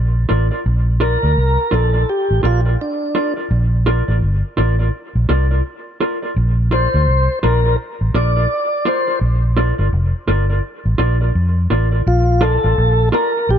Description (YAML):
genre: roots reggae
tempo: 84 BPM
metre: 4/4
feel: swing 62% on 16ths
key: Bb major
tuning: A4 = 441 Hz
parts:
  - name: vintage muted fingered electric bass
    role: bass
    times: 0.0-13.6 s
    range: F1 to F2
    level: -15 LUFS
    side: equal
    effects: none
  - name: mellow electric guitar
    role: accompaniment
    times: 0.3-13.3 s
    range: F4 to D5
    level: -22 LUFS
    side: right 1 dB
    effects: dub echo
  - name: mellow tonewheel organ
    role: melody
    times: 1.0-13.6 s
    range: D4 to D5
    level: -19 LUFS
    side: left 1 dB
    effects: slow rotary speaker, dub echo
room: little or no reverb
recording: dark, warm production, nothing above 7.6 kHz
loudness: -14 LUFS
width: side -9 dB against mid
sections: 0.0-12.1 A section; 12.1-13.6 B section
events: none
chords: 0.0 Bb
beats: | 0.65 1.36 2.07 2.79 | 3.50 4.21 4.93 5.64 | 6.36 7.07 7.78 8.49 | 9.21 9.92 10.63 11.35 | 12.06 12.77 13.48